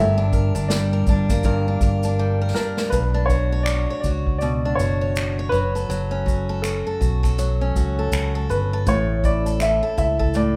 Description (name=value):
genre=acoustic pop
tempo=81 BPM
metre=4/4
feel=swing 60% on 16ths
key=unclear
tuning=A4 = 439 Hz
part: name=warm upright piano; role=melody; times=0.0-10.6 s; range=A4 to E5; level=-27 LUFS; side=equal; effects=none
part: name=picked steel-string acoustic guitar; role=accompaniment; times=0.0-10.6 s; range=G2 to C#5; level=-27 LUFS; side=equal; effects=none
part: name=fingered electric bass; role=bass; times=0.0-10.6 s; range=F#1 to C#2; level=-25 LUFS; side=equal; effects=none
part: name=unplugged drum kit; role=drums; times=0.3-10.6 s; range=finger snaps, kick drum, shaker, snare drum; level=-26 LUFS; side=equal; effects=none
room=moderate recital hall reverb, RT60 1.4 s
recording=recorded in a church or concert hall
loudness=-21 LUFS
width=mono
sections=0.0-2.9 A section; 2.9-10.6 B section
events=drum fill 2.2-2.9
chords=0.0 Gm; 2.9 Bmadd9; 5.5 F#m; 8.9 A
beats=0.70 1.44 2.19 | 2.93 3.67 4.41 5.16 | 5.90 6.64 7.38 8.13 | 8.87 9.62 10.36